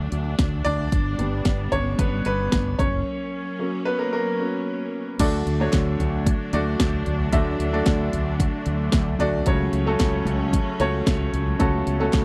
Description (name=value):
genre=piano-driven pop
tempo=112 BPM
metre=4/4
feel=straight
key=unclear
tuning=A4 = 440 Hz
part: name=bright upright piano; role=accompaniment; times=0.0-12.2 s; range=C#3 to E5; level=-28 LUFS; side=equal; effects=none
part: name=clear studio string section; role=sustained chords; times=0.0-12.2 s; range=F#3 to D4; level=-34 LUFS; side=equal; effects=none
part: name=fretless electric bass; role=bass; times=0.0-12.2 s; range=F#1 to D2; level=-28 LUFS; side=equal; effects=none
part: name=house drum kit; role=drums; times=0.1-12.2 s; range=crash cymbal, hi-hat, kick drum, snare drum, toms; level=-26 LUFS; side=equal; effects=none
part: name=group handclap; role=percussion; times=5.7-12.2 s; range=none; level=-42 LUFS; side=equal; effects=none
room=little or no reverb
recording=dry, close 1970s-style studio recording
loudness=-23 LUFS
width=mono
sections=0.0-5.2 A section; 5.2-12.2 B section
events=upright piano solo 0.0-5.2; break 3.1-5.2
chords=0.0 D; 0.9 G; 2.8 F#; 5.2 D; 9.5 F#m/C#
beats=0.38 | 0.92 1.45 1.99 2.52 | 3.06 3.59 4.13 4.66 | 5.20 5.73 6.26 6.80 | 7.33 7.87 8.40 8.93 | 9.47 10.00 10.54 11.07 | 11.60 12.14